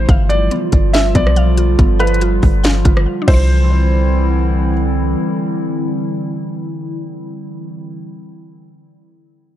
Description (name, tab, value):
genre	hip hop, atmospheric cloud-rap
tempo	141 BPM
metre	4/4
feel	half-time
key	C major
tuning	A4 = 441 Hz
part	felt-muted upright piano	melody	0.0-4.7 s	B4 to E5	-22 LUFS	equal	tape echo
part	warbly tape-like pad	sustained chords	0.0-7.5 s	D3 to F4	-20 LUFS	equal	chorus, built-in reverb, sidechain pumping
part	mallet-like synth pluck	arpeggios	0.0-7.6 s	B3 to F5	-26 LUFS	left 3 dB	chorus, tape echo
part	warm 808-style bass	bass	0.0-5.2 s	G1 to C2	-14 LUFS	equal	none
part	trap drum kit	drums	0.1-3.4 s	crash cymbal, hi-hat, kick drum, rim click, snare drum	-14 LUFS	equal	none
room	little or no reverb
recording	dark, warm production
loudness	-12 LUFS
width	side -12 dB against mid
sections	0.0-3.5 A section; 3.5-6.9 B section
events	drums muted 3.1-3.5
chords	0.1 G7; 3.3 Cadd9